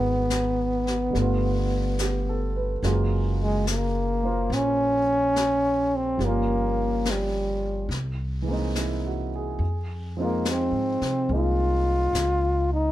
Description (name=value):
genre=jazz ballad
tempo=71 BPM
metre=4/4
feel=swing 66% on 8ths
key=unclear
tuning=A4 = 441 Hz
part: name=breathy trombone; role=melody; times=0.0-12.9 s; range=G3 to F4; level=-24 LUFS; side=left 1 dB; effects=plate reverb
part: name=warm grand piano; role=accompaniment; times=0.0-12.9 s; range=Db3 to C5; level=-31 LUFS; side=right 3 dB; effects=none
part: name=upright bass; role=bass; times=0.0-12.9 s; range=Gb1 to C3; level=-27 LUFS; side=equal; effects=none
part: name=jazz brush drum kit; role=drums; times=0.3-12.9 s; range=brushed snare drum, hi-hat, snare drum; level=-34 LUFS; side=left 3 dB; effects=none
room=little or no reverb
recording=none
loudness=-22 LUFS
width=side -14 dB against mid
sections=0.0-12.9 A section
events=none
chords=0.0 Abm7; 1.1 G9; 2.8 Gbmaj9; 6.2 Gm7b5; 7.9 C7alt; 9.6 Fm7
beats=0.30 1.14 1.99 | 2.83 3.68 4.52 5.37 | 6.21 7.06 7.91 8.76 | 9.60 10.45 11.30 12.15